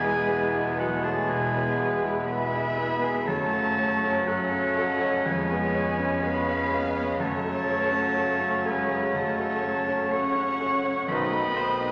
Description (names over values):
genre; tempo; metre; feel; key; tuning
classical, romantic movement for piano and orchestra; 61 BPM; 4/4; rubato; unclear; A4 = 436 Hz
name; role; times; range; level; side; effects
bright grand piano; melody; 0.0-11.9 s; B1 to C#5; -33 LUFS; equal; none
muted studio violin section; melody; 0.0-11.9 s; G#4 to D#5; -43 LUFS; equal; none
bright clarinet; second line; 0.0-11.9 s; B3 to C#4; -36 LUFS; equal; none
bright oboe; second line; 0.0-11.9 s; F#5 to C#6; -32 LUFS; equal; none
muted studio violin section; second line; 0.0-11.9 s; A4 to F#5; -38 LUFS; equal; none
silver concert flute; second line; 0.0-11.9 s; F#5 to C#6; -37 LUFS; equal; none
muted studio viola section; accompaniment; 0.0-11.9 s; F#4 to C#5; -37 LUFS; equal; none
warm bassoon; accompaniment; 0.0-11.9 s; D#3 to G#3; -36 LUFS; equal; none
bright trombone section; sustained chords; 0.0-11.4 s; B2 to G#3; -38 LUFS; equal; none
warm French horn section; sustained chords; 0.0-11.5 s; A3 to E4; -40 LUFS; equal; none
dark trumpet section; stabs; 0.0-11.4 s; G#4 to C#5; -39 LUFS; equal; none
muted studio cello section; bass; 0.0-11.9 s; F#3 to C#4; -38 LUFS; equal; none
muted symphonic double bass section; bass; 0.0-11.9 s; B1 to F#2; -43 LUFS; equal; none
room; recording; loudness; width
wet scoring stage reverb, RT60 1.8 s; none; -26 LUFS; mono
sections
0.0-11.9 A section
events
none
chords
0.0 E; 3.3 F#m; 5.3 C#7/E#; 7.2 F#m; 11.1 B7b9